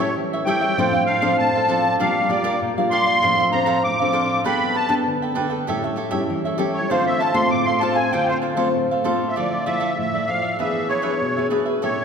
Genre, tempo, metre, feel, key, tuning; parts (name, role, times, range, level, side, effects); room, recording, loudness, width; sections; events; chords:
samba; 98 BPM; 4/4; straight; D minor; A4 = 440 Hz
musette accordion; melody; 0.0-12.0 s; C5 to D6; -22 LUFS; equal
cavaquinho; accompaniment; 0.0-12.0 s; D4 to G5; -23 LUFS; right 3 dB
nylon-string guitar; accompaniment; 0.0-12.0 s; A2 to A4; -22 LUFS; left 2 dB
wet concert hall reverb, RT60 2.1 s; recorded in a church or concert hall; -18 LUFS; side -6 dB against mid
0.0-9.4 A section; 9.4-12.0 B section
accordion solo 0.0-9.4
0.0 A7; 0.8 Dm7/A; 2.0 Gm7/Bb; 3.2 Dm7/A; 4.5 Gadd9; 5.7 A7; 6.9 Dm7; 9.4 Dmadd9; 10.6 E7